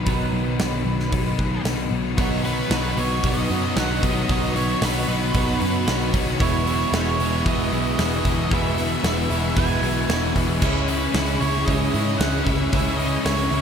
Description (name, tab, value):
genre	rock, shoegaze and dream pop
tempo	114 BPM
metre	4/4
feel	straight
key	B major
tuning	A4 = 440 Hz
part	octave-fuzz lead guitar	melody	0.0-13.6 s	B4 to G#5	-30 LUFS	right 3 dB	distortion, diffuse ambient delay
part	biting overdriven guitar	riff	0.0-13.6 s	B2 to E4	-26 LUFS	left 8 dB	analog chorus
part	biting overdriven guitar	riff	0.0-13.6 s	E2 to B4	-28 LUFS	right 8 dB	reverse reverb
part	vintage muted picked electric bass	bass	0.0-13.6 s	E1 to G#2	-25 LUFS	equal	none
part	huge arena drum kit	drums	0.1-13.6 s	crash cymbal, hi-hat, kick drum, snare drum	-26 LUFS	equal	none
part	biting overdriven guitar	riff	2.2-13.6 s	E2 to C#4	-28 LUFS	equal	spring reverb
room	moderate plate reverb, RT60 2.0 s, small room ambience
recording	dreamy mix soaked in reverb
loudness	-19 LUFS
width	side -7 dB against mid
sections	0.0-2.2 A section; 2.2-13.6 B section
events	none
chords	0.0 B; 6.4 E6; 10.6 C#madd9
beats	| 0.07 0.60 1.12 1.65 | 2.18 2.71 3.24 3.77 | 4.29 4.82 5.35 5.88 | 6.41 6.93 7.46 7.99 | 8.52 9.04 9.57 10.10 | 10.62 11.15 11.67 12.20 | 12.72 13.25